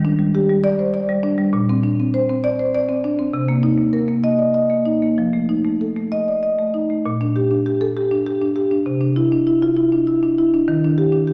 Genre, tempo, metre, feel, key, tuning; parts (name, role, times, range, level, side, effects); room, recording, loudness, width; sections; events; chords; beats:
classical, contemporary piece for solo marimba; 100 BPM; 3/4; straight; Bb major; A4 = 442 Hz
marimba with soft mallets; solo; 0.0-11.3 s; Bb2 to Eb5; -18 LUFS; equal
wet concert hall reverb, RT60 2.0 s; -19 LUFS; mono
0.0-7.0 A section; 7.0-11.3 B section
0.0 Ebmaj7; 1.5 Bbadd9; 3.3 Cm7; 5.2 F; 7.0 Bb6; 8.9 Cadd9; 10.7 Ebmaj7
0.34 0.94 | 1.54 2.13 2.73 | 3.33 3.92 4.54 | 5.17 5.80 6.43 | 7.05 7.66 8.26 | 8.86 9.47 10.07 | 10.67 11.27